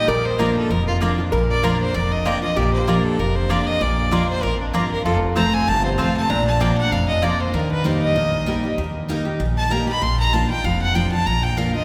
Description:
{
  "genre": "bluegrass",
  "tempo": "193 BPM",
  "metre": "4/4",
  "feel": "swing 54% on 8ths",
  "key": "Bb major",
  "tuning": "A4 = 439 Hz",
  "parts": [
    { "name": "clear fiddle", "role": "melody", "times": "0.0-11.8 s", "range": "D4 to C6", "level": "-25 LUFS", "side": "equal", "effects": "none" },
    { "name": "lap resonator guitar", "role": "second line", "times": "0.0-7.4 s", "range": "D4 to Bb4", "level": "-30 LUFS", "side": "equal", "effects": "none" },
    { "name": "picked steel-string acoustic guitar", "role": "accompaniment", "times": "0.0-11.8 s", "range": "F2 to G4", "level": "-25 LUFS", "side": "equal", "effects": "none" },
    { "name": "upright bass", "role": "bass", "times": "0.1-11.7 s", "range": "F1 to Eb2", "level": "-26 LUFS", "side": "equal", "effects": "none" },
    { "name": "mandolin", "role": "stabs", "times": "0.4-7.3 s", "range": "Bb3 to Bb5", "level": "-31 LUFS", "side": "equal", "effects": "none" }
  ],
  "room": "wet cathedral reverb, RT60 5.2 s",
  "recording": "recorded in a church or concert hall",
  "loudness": "-20 LUFS",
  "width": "mono",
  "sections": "0.0-7.5 A section; 7.5-11.8 A section",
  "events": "fiddle solo 0.0-11.8",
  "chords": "0.1 Bb; 5.1 F; 6.3 Bb; 7.5 Eb; 10.0 Bb"
}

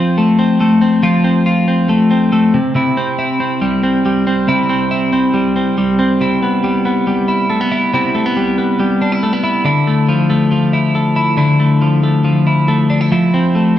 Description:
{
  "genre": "indie pop",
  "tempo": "139 BPM",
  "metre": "4/4",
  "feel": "straight",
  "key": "C major",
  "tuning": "A4 = 439 Hz",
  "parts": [
    { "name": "twelve-string electric guitar", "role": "solo", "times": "0.0-13.8 s", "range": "C3 to F4", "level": "-12 LUFS", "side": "left 1 dB", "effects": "none" }
  ],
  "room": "wet stone room reverb, RT60 1.4 s",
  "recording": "band playing live in one room",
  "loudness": "-12 LUFS",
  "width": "side -11 dB against mid",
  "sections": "0.0-6.2 A section; 6.2-13.8 B section",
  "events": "none",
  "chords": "0.0 F; 2.5 C; 6.2 Cmaj7; 9.7 Dmadd9; 13.1 Fmaj7"
}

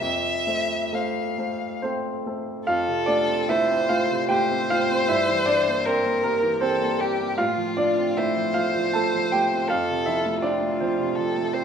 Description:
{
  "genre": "classical, romantic duo for violin and grand piano",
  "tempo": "66-82 BPM",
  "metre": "3/4",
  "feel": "rubato",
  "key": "F major",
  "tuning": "A4 = 440 Hz",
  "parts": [
    { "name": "rich violin", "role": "melody", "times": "0.0-11.6 s", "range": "F4 to F5", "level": "-25 LUFS", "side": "left 1 dB", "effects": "none" },
    { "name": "warm baby grand piano", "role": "accompaniment", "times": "0.0-11.6 s", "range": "F2 to A5", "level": "-23 LUFS", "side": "right 1 dB", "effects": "none" }
  ],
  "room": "wet scoring stage reverb, RT60 2.0 s",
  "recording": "minimal, uncompressed stereo recording",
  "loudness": "-21 LUFS",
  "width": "side -7 dB against mid",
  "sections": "0.0-2.7 A section; 2.7-11.6 A section",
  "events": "none",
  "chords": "0.0 F; 5.1 C7/G; 7.4 F/A; 9.7 F"
}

